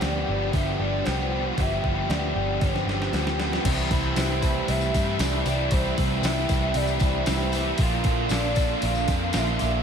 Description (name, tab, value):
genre	rock, shoegaze and dream pop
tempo	116 BPM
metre	4/4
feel	straight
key	C mixolydian from 3.6 s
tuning	A4 = 439 Hz
part	pure sine lead	melody	0.0-9.8 s	C5 to F5	-32 LUFS	left 1 dB	chorus, ping-pong delay
part	twelve-string electric guitar	arpeggios	0.0-9.8 s	E3 to G4	-34 LUFS	right 2 dB	analog chorus, ping-pong delay
part	overdriven electric guitar	riff	0.0-9.8 s	G2 to G4	-29 LUFS	left 8 dB	ensemble chorus
part	overdriven electric guitar	riff	0.0-9.8 s	G2 to G4	-29 LUFS	right 9 dB	reverse reverb
part	vintage muted picked electric bass	bass	0.0-9.8 s	G1 to G2	-28 LUFS	equal	none
part	gated 80s digital drum machine	drums	0.0-9.7 s	crash cymbal, hi-hat, kick drum, snare drum	-27 LUFS	equal	gated reverb, gated reverb snare, overdrive
part	tambourine	percussion	3.8-9.7 s	none	-40 LUFS	left 13 dB	none
room	moderate plate reverb, RT60 1.5 s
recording	dreamy mix soaked in reverb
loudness	-22 LUFS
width	side -7 dB against mid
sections	0.0-3.6 A section; 3.6-9.8 B section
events	drum fill 2.6-3.6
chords	0.0 G7sus4; 3.6 C6; 7.8 Bb